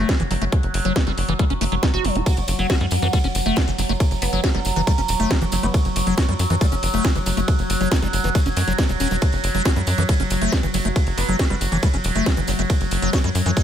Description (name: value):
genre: psychedelic trance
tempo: 138 BPM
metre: 4/4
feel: straight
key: F# phrygian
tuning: A4 = 439 Hz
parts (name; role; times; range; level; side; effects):
- overtone-sweeping drone; sustained chords; 0.0-13.6 s; F#3; -26 LUFS; right 1 dB; chorus, built-in reverb, sidechain pumping
- liquid acid bass; riff; 0.0-13.6 s; E3 to F#4; -25 LUFS; left 2 dB; phaser, auto-pan, cassette tape, sidechain pumping, tape echo
- tight sequencer bass; bass; 0.0-13.5 s; E1 to F#2; -23 LUFS; equal; tube saturation
- electronic kick drum; drums; 0.1-13.6 s; none; -19 LUFS; equal; studio reverb
- garage drum kit; drums; 0.1-13.6 s; hi-hat, ride cymbal, snare drum; -27 LUFS; equal; studio reverb
- tambourine; percussion; 2.3-13.6 s; none; -34 LUFS; right 3 dB; none
- resonant blip pluck; second line; 4.2-6.1, 11.2-11.3 s; B3; -35 LUFS; left 1 dB; phaser, lush chorus, sidechain pumping, high-pass filter, tape echo
room: digital ambience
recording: none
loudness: -18 LUFS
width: side -10 dB against mid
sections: 0.0-13.6 A section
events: none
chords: 0.0 F#5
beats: 0.09 | 0.52 0.96 1.39 1.83 | 2.26 2.70 3.13 3.57 | 4.00 4.44 4.87 5.31 | 5.74 6.18 6.61 7.05 | 7.48 7.92 8.35 8.79 | 9.22 9.65 10.09 10.52 | 10.96 11.39 11.83 12.26 | 12.70 13.13 13.57